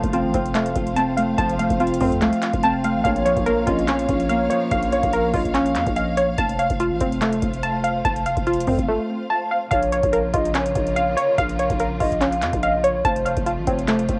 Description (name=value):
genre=hip hop, trap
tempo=144 BPM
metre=4/4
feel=half-time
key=Bb harmonic minor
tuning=A4 = 440 Hz
part: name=Celtic harp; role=accompaniment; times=0.0-7.5 s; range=Bb2 to F5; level=-27 LUFS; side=equal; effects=low-pass filter, cassette tape
part: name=warm symphonic string section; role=sustained chords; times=0.0-14.2 s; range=C3 to F5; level=-34 LUFS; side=equal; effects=cassette tape
part: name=glassy wavetable pluck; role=arpeggios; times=0.0-14.2 s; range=A3 to A5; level=-24 LUFS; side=equal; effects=chorus, low-pass filter, cassette tape, tape echo
part: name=growling 808-style bass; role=bass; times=0.0-14.2 s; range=F1 to F2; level=-29 LUFS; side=equal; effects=none
part: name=booming analog drum machine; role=drums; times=0.0-14.2 s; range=handclaps, hi-hat, kick drum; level=-30 LUFS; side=equal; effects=overdrive, cassette tape
part: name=hollow clarinet-like synth lead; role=second line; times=3.0-6.4, 9.7-14.2 s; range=C5 to F5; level=-28 LUFS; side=equal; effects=chorus, cassette tape, tape echo
room=light reverb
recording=home recording on cassette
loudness=-21 LUFS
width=mono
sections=0.0-9.7 A section; 9.7-14.2 B section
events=break 8.9-9.7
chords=0.0 F; 3.0 Bbm; 6.4 F; 9.7 Bbm; 13.0 F